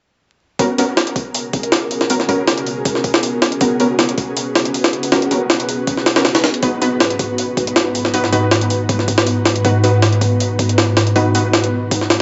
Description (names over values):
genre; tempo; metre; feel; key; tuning
drum and bass, jungle; 159 BPM; 4/4; straight; G# minor; A4 = 441 Hz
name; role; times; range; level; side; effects
ethereal airy pad; sustained chords; 1.1-12.2 s; G#2 to B4; -21 LUFS; equal; ensemble chorus, built-in reverb, tremolo, vintage 12-bit sampler grit
orchestra-hit-like synth stab; stabs; 0.6-11.4 s; B3 to B4; -22 LUFS; equal; built-in reverb, dub echo
jungle sampler-style drum kit; drums; 0.6-12.2 s; hi-hat, kick drum, snare drum; -19 LUFS; equal; high-pass filter on kick, high-pass filter on hats, high-pass filter on snare
room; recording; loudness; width
light reverb, digital ambience; dry, gritty hardware recording, vinyl crackle, nothing above 7.8 kHz; -16 LUFS; mono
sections
0.6-12.2 A section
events
none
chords
0.6 G#m11; 6.6 B/G#